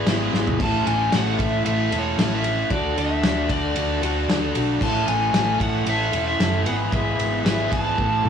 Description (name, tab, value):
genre	folk rock and heartland rock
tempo	114 BPM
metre	4/4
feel	straight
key	A major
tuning	A4 = 440 Hz
part	overdriven slide guitar	melody	0.0-8.3 s	C#5 to A5	-26 LUFS	equal	none
part	picked plugged-in steel-string acoustic guitar	accompaniment	0.0-8.3 s	A2 to B4	-27 LUFS	left 6 dB	none
part	dark studio string section	sustained chords	0.0-8.3 s	G#4 to E6	-38 LUFS	right 1 dB	none
part	raw garage guitar	riff	0.0-8.3 s	G#2 to B4	-26 LUFS	right 2 dB	overdrive
part	hollow-body short-scale fingered electric bass	bass	0.0-8.3 s	E1 to D2	-26 LUFS	right 1 dB	none
part	loose indie drum kit	drums	0.1-8.3 s	crash cymbal, kick drum, ride cymbal, snare drum, toms	-25 LUFS	equal	none
room	light reverb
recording	blown-out, overdriven recording, overdrive, small room ambience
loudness	-19 LUFS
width	side -7 dB against mid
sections	0.0-8.3 A section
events	drum fill 0.3, 8.0-8.3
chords	0.0 E/G#; 0.6 A; 2.7 D; 4.8 A; 6.7 E/G#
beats	0.07 | 0.60 1.13 1.65 2.18 | 2.71 3.23 3.76 4.29 | 4.82 5.34 5.87 6.40 | 6.92 7.45 7.98